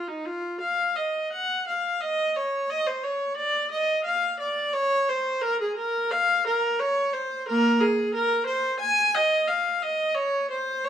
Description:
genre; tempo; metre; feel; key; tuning
classical, baroque-style suite movement for unaccompanied viola; 88 BPM; 4/4; rubato; unclear; A4 = 440 Hz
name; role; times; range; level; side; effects
rich viola; solo; 0.0-10.9 s; Bb3 to Ab5; -23 LUFS; equal; none
room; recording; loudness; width
moderate stone room reverb, RT60 1.2 s; none; -23 LUFS; side -9 dB against mid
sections
0.0-10.9 A section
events
none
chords
none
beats
| 0.60 1.32 2.02 2.70 | 3.38 4.06 4.74 5.43 | 6.11 6.79 7.46 8.14 | 8.81 9.49 10.16 10.85

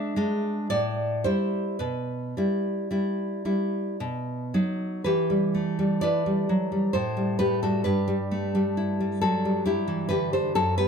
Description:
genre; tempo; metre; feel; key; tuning
romantic piece for solo classical guitar; 54-68 BPM; 3/4; rubato; E minor; A4 = 441 Hz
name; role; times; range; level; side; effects
nylon-string guitar; solo; 0.0-10.9 s; F#2 to E5; -24 LUFS; equal; none
room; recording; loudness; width
light reverb; close, detailed microphones; -24 LUFS; side -6 dB against mid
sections
0.0-5.1 A section; 5.1-10.9 B section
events
none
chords
0.0 E7; 0.7 Am7; 1.8 Em/B; 4.0 B; 5.1 Em; 6.9 Am7; 7.8 Em/G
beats
0.70 | 1.81 2.91 4.00 | 5.06 6.02 6.94 | 7.85 8.78 9.67 | 10.57

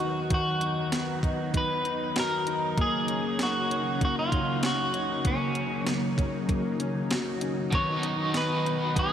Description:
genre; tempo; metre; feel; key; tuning
dream pop; 97 BPM; 4/4; straight; F# major; A4 = 441 Hz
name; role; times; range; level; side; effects
electric guitar at the edge of break-up; melody; 0.0-9.1 s; C#4 to C#5; -29 LUFS; equal; lush chorus, digital delay
string machine, cellos; sustained chords; 0.0-9.1 s; C#3 to D#4; -32 LUFS; right 1 dB; phaser, ensemble chorus
mellow electric guitar; arpeggios; 0.0-9.1 s; D#3 to F#4; -32 LUFS; left 3 dB; analog chorus, digital delay
clean 12-bit digital drum machine; drums; 0.0-9.1 s; hi-hat, kick drum, snare drum; -30 LUFS; equal; overdrive, gated reverb
biting overdriven guitar; accompaniment; 7.7-9.1 s; B2 to D#4; -32 LUFS; right 2 dB; harmonic tremolo, lush chorus
room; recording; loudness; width
wet lush hall reverb, RT60 3.0 s; bright 1980s-style digital production; -25 LUFS; side -9 dB against mid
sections
0.0-9.1 A section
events
none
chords
0.0 B; 2.8 F#; 7.7 B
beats
| 0.30 0.92 1.54 2.16 | 2.78 3.40 4.01 4.63 | 5.25 5.87 6.49 7.11 | 7.73 8.35 8.96

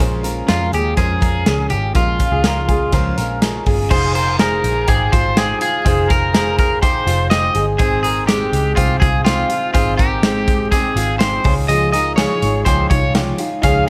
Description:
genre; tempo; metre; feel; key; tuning
jangly indie pop; 123 BPM; 4/4; straight; F minor; A4 = 441 Hz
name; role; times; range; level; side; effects
bright upright piano; accompaniment; 0.0-13.9 s; Ab3 to Db5; -28 LUFS; equal; none
picked plugged-in steel-string acoustic guitar; accompaniment; 0.0-3.9, 11.7-13.9 s; Bb2 to F4; -28 LUFS; equal; none
electric guitar through a small old amp; arpeggios; 0.0-13.9 s; Ab3 to C5; -25 LUFS; equal; spring reverb
vintage muted picked electric bass; bass; 0.0-13.9 s; F1 to F2; -23 LUFS; equal; none
modern studio drum kit; drums; 0.0-13.7 s; crash cymbal, hi-hat, kick drum, snare drum; -20 LUFS; equal; none
electric guitar at the edge of break-up; melody; 0.5-13.9 s; F4 to F5; -22 LUFS; equal; none
breathy trumpet; second line; 3.9-13.9 s; F4 to F5; -31 LUFS; equal; none
room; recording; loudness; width
light reverb; vinyl crackle; -16 LUFS; mono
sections
0.0-3.9 A section; 3.9-13.9 B section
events
none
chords
0.0 Bbm7; 3.9 Fm7; 7.8 Ab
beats
| 0.00 0.49 0.98 1.47 | 1.96 2.45 2.94 3.42 | 3.91 4.40 4.88 5.37 | 5.86 6.34 6.83 7.32 | 7.80 8.29 8.77 9.26 | 9.74 10.23 10.72 11.20 | 11.69 12.18 12.66 13.15 | 13.63

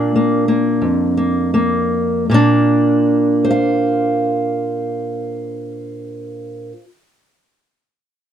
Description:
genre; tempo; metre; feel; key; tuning
folk, solo fingerstyle acoustic guitar; 81 BPM; 4/4; rubato; Bb major; A4 = 440 Hz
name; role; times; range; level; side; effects
fingerpicked steel-string acoustic guitar; solo; 0.0-6.8 s; F2 to F5; -15 LUFS; equal; none
room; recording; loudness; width
moderate booth ambience, RT60 0.2 s; dry, close 1970s-style studio recording; -14 LUFS; side -9 dB against mid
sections
0.0-2.3 A section; 2.3-5.3 B section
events
slowing down 0.0-2.3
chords
0.0 Bb; 2.3 Bbadd9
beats
0.15 0.83 1.54 | 2.30 3.07 3.81 4.55

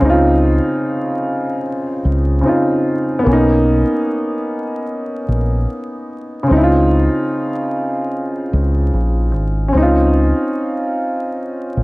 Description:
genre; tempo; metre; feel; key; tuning
hip hop; 74 BPM; 4/4; swing 55% on 16ths; Db major; A4 = 440 Hz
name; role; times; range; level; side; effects
clear upright piano; accompaniment; 0.0-11.8 s; Db3 to F4; -16 LUFS; equal; low-pass filter, cassette tape
deep dub fingered electric bass; bass; 0.0-11.8 s; Ab1 to Db2; -15 LUFS; equal; none
room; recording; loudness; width
light reverb; home recording on cassette, vinyl crackle; -14 LUFS; side -21 dB against mid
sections
0.0-9.7 A section; 9.7-11.8 B section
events
none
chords
0.0 Dbmaj9; 3.3 Cbmaj9; 6.5 Dbmaj9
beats
| 0.02 0.83 1.64 2.45 | 3.26 4.07 4.88 5.69 | 6.50 7.31 8.12 8.94 | 9.75 10.56 11.37

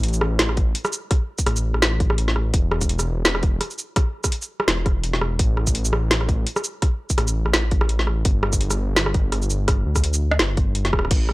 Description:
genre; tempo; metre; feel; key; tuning
half-time drum and bass; 168 BPM; 4/4; swing 55% on 16ths, half-time; unclear; A4 = 441 Hz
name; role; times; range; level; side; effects
dark detuned saw bass; bass; 0.0-11.3 s; E1 to D2; -22 LUFS; equal; none
drum and bass drum kit; drums; 0.0-11.3 s; crash cymbal, hi-hat, rim click, shaker, snare drum; -22 LUFS; equal; none
electronic kick drum; drums; 0.6-11.2 s; none; -20 LUFS; equal; none
room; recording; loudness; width
little or no reverb; dry, gritty hardware recording, transformer saturation; -19 LUFS; side -20 dB against mid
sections
0.0-11.3 A section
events
none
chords
none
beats
0.04 0.39 0.75 | 1.11 1.46 1.82 2.18 | 2.54 2.89 3.25 3.61 | 3.96 4.32 4.68 5.04 | 5.39 5.75 6.11 6.46 | 6.82 7.18 7.54 7.89 | 8.25 8.61 8.96 9.32 | 9.68 10.04 10.39 10.75 | 11.11

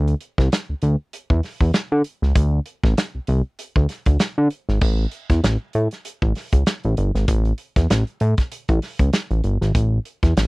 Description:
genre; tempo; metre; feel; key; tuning
funk; 97 BPM; 4/4; swing 56% on 16ths; unclear; A4 = 440 Hz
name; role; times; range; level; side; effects
fat analog bass; bass; 0.0-10.5 s; G1 to D3; -18 LUFS; equal; none
warm soul drum kit; drums; 0.1-10.5 s; crash cymbal, hi-hat, kick drum, snare drum; -20 LUFS; equal; none
room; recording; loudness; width
little or no reverb; dry, close 1970s-style studio recording; -18 LUFS; side -26 dB against mid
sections
0.0-4.8 A section; 4.8-10.5 B section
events
none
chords
none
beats
0.52 1.13 1.75 | 2.36 2.97 3.59 4.20 | 4.82 5.43 6.05 6.67 | 7.28 7.90 8.52 9.13 | 9.75 10.37

